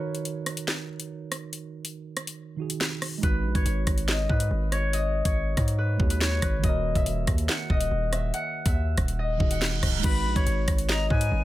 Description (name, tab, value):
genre	hip hop, drill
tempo	141 BPM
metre	4/4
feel	half-time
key	G# minor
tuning	A4 = 440 Hz
part	concert harp	melody	0.0-11.4 s	B4 to F#5	-31 LUFS	left 3 dB	low-pass filter, digital delay
part	tine electric piano	accompaniment	0.0-11.4 s	D#3 to B4	-35 LUFS	right 8 dB	low-pass filter
part	drill drum kit	drums	0.1-11.3 s	crash cymbal, handclaps, hi-hat, kick drum, rim click, snare drum	-26 LUFS	equal	none
part	distorted 808-style bass	bass	3.2-11.4 s	C#1 to G#2	-27 LUFS	equal	distortion
part	reverse cymbal	sound effects	9.4-10.0 s	none	-34 LUFS	right 9 dB	none
part	bright silver concert flute	second line	10.0-11.4 s	G#5 to B5	-32 LUFS	left 4 dB	digital delay
room	little or no reverb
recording	none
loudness	-24 LUFS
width	side -15 dB against mid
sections	0.0-10.0 A section; 10.0-11.4 B section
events	break 0.0-3.2; reverse cymbal 9.4-10.0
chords	0.0 D#m; 3.2 G#m7; 6.6 D#m; 10.0 G#m7